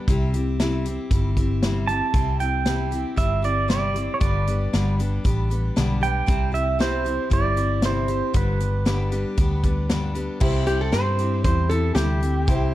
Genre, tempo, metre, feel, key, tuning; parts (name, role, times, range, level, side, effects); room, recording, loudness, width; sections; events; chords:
honky-tonk and classic country; 116 BPM; 4/4; straight; C major; A4 = 440 Hz
picked steel-string acoustic guitar; accompaniment; 0.0-12.7 s; G2 to G4; -27 LUFS; left 2 dB
vintage muted fingered electric bass; bass; 0.1-12.7 s; G1 to G2; -24 LUFS; equal
natural country drum kit; drums; 0.1-12.6 s; crash cymbal, hi-hat, kick drum, snare drum; -24 LUFS; equal
pedal steel guitar; second line; 1.9-9.9 s; B4 to A5; -26 LUFS; right 5 dB
bright upright piano; accompaniment; 10.4-12.7 s; E4 to C5; -33 LUFS; right 5 dB
lap resonator guitar; melody; 10.7-12.7 s; G4 to C5; -25 LUFS; equal
light reverb; dark, warm production; -20 LUFS; side -14 dB against mid
0.0-10.4 A section; 10.4-12.7 B section
pedal steel guitar solo 0.0-10.4; resonator guitar played with a steel bar solo 10.4-12.7
0.1 C; 4.2 G; 6.3 C; 8.3 G; 10.4 C